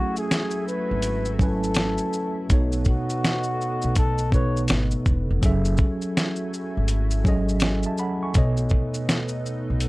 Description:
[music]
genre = lo-fi hip hop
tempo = 82 BPM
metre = 4/4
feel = swing 64% on 16ths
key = F# dorian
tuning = A4 = 440 Hz
[part]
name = breathy flugelhorn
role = melody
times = 0.0-4.7 s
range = F#4 to C#5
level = -29 LUFS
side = left 1 dB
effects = none
[part]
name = mellow tine electric piano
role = accompaniment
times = 0.0-9.9 s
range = B2 to C#6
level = -26 LUFS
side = right 1 dB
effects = medium stereo tremolo, cassette tape
[part]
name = lush unison pad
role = sustained chords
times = 0.0-9.9 s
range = F#3 to G#5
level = -35 LUFS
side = equal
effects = chorus
[part]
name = dusty soul sampler-style drum kit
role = drums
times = 0.2-9.9 s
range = hi-hat, kick drum, shaker, snare drum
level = -22 LUFS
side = equal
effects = none
[part]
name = upright bass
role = bass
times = 0.9-9.9 s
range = E1 to B1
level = -25 LUFS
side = equal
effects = none
[sound]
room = little or no reverb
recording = none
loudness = -21 LUFS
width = side -21 dB against mid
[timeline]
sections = 0.0-9.9 A section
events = none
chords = 0.0 F#m9; 2.5 B7; 5.4 F#m9; 8.4 B7

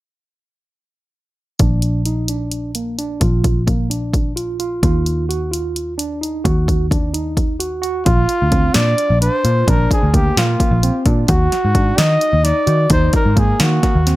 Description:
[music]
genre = progressive instrumental, band music in an uneven meter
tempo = 260 BPM (eighths)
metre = 7/8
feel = straight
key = Bb mixolydian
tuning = A4 = 440 Hz
[part]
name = barky tine electric piano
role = arpeggios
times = 1.6-14.2 s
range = Bb3 to Gb4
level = -23 LUFS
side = right 2 dB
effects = medium stereo tremolo
[part]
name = picked electric bass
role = bass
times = 1.6-14.1 s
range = Bb1 to Eb3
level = -17 LUFS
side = equal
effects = none
[part]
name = punchy analog drum machine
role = drums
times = 1.6-14.2 s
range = hi-hat, kick drum, snare drum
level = -17 LUFS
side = equal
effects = none
[part]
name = mellow trumpet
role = melody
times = 8.1-14.2 s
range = F4 to Eb5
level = -18 LUFS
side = equal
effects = tape echo
[sound]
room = little or no reverb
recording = none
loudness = -14 LUFS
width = side -17 dB against mid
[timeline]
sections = 1.6-8.1 A section; 8.1-14.2 B section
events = none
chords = 1.6 Bb; 4.8 Ebmadd9; 8.1 Bb; 11.3 Ebm

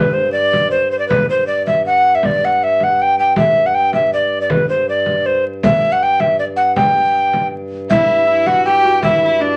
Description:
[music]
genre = medieval dance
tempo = 159 BPM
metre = 3/4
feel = straight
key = G major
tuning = A4 = 439 Hz
[part]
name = mellow hollow tenor recorder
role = melody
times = 0.0-9.6 s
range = B4 to G5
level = -16 LUFS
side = equal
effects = none
[part]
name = hand-pumped harmonium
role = drone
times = 0.0-9.6 s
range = G2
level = -28 LUFS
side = equal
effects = none
[part]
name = frame drum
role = percussion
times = 0.5-9.2 s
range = none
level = -22 LUFS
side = equal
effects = none
[part]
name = Celtic harp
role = second line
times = 7.9-9.6 s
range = D4 to G4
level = -26 LUFS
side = equal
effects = none
[part]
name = clear fiddle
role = second line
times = 7.9-9.6 s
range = D4 to G4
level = -24 LUFS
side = equal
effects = none
[sound]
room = moderate studio reverb, RT60 0.5 s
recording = vinyl crackle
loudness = -15 LUFS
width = mono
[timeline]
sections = 0.0-7.9 A section; 7.9-9.6 A section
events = none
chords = none

